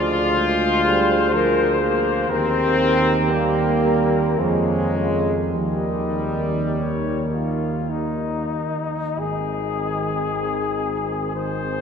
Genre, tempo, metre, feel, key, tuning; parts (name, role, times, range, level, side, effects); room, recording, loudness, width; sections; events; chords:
classical, hymn-like piece for brass band; 44-62 BPM; 3/4; rubato; Ab major; A4 = 440 Hz
warm flugelhorn; melody; 0.0-11.8 s; Eb4 to Eb5; -25 LUFS; left 5 dB
warm French horn section; second line; 0.0-11.8 s; Eb4 to Bb4; -28 LUFS; right 6 dB
warm euphonium; accompaniment; 0.0-11.8 s; Db3 to Ab3; -29 LUFS; right 3 dB
warm trombone section; accompaniment; 0.0-11.8 s; G3 to Bb4; -23 LUFS; left 2 dB
dark tuba; bass; 0.0-11.8 s; Ab1 to F2; -24 LUFS; right 1 dB
wet cathedral reverb, RT60 6.7 s; nothing above 10.7 kHz; -18 LUFS; side -6 dB against mid
0.0-9.2 A section; 9.2-11.8 B section
0.0 Bb7/D; 2.3 Eb; 4.4 Db/F; 5.6 Eb; 9.2 Ab